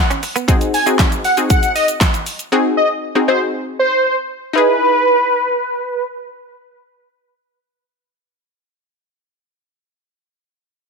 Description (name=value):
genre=dance-pop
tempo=118 BPM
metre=4/4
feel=straight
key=E major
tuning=A4 = 440 Hz
part: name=wide unison lead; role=melody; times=0.0-6.0 s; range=B4 to G#5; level=-16 LUFS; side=right 1 dB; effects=phaser, digital delay
part: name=direct-recorded clean electric guitar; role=riff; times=0.1-0.5 s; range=B3 to C#4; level=-22 LUFS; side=right 6 dB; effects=ensemble chorus
part: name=pop drum kit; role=drums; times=0.1-2.5 s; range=handclaps, hi-hat, kick drum, shaker, snare drum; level=-16 LUFS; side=equal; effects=none
part: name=analog pluck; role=accompaniment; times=0.5-8.6 s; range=B#3 to G#4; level=-18 LUFS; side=left 3 dB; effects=chorus, sidechain pumping
room=light reverb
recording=none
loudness=-13 LUFS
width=side -4 dB against mid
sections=0.0-4.6 A section; 4.6-8.6 B section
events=drop 0.0-4.6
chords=0.5 G#7; 4.6 Emaj7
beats=| 0.48 0.99 1.50 2.01 | 2.52 3.03 3.54 4.04 | 4.55 5.06 5.57 6.08 | 6.59 7.09 7.60 8.11